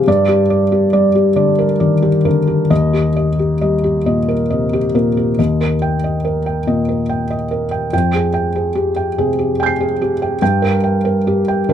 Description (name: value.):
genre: neoclassical minimalist piano.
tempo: 44-49 BPM (dotted quarters).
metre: 6/8.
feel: rubato.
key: Eb major.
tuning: A4 = 440 Hz.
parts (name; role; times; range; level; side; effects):
felt-muted upright piano; solo; 0.0-11.7 s; Eb2 to C7; -13 LUFS; equal; none.
room: light reverb.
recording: close, detailed microphones.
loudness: -13 LUFS.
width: side -9 dB against mid.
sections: 0.0-5.4 A section; 5.4-11.7 B section.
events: none.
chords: 0.1 Gm; 2.7 Eb; 7.9 Fmadd9; 10.4 Gm.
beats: | 0.07 1.36 | 2.70 4.05 | 5.38 6.67 | 7.92 9.17 | 10.41 11.69.